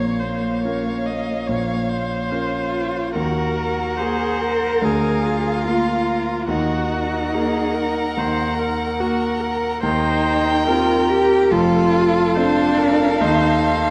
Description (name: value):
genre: classical, slow romantic movement for piano quintet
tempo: 71 BPM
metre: 4/4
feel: rubato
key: unclear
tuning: A4 = 440 Hz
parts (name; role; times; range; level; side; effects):
- rich violin; melody; 0.0-13.9 s; F5 to G5; -29 LUFS; equal; none
- rich violin; second line; 0.0-13.9 s; A4 to Db5; -30 LUFS; equal; none
- warm cello; second line; 0.0-13.9 s; Bb3 to Bb4; -24 LUFS; equal; none
- clear concert grand piano; accompaniment; 0.0-13.9 s; F1 to Bb4; -25 LUFS; equal; none
- rich viola; accompaniment; 0.0-13.9 s; F4 to Eb5; -28 LUFS; equal; none
room: moderate concert hall reverb, RT60 2.4 s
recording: dark, warm production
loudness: -20 LUFS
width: mono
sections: 0.0-13.9 A section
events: none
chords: 0.0 Bbm; 3.2 Ebm; 4.8 Bb7/D; 6.5 Ebm; 9.8 Cm7/Eb; 11.5 F; 13.2 F7/Eb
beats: 0.65 1.49 2.32 | 3.16 3.98 4.82 5.65 | 6.49 7.33 8.17 8.99 | 9.84 10.67 11.52 12.37 | 13.22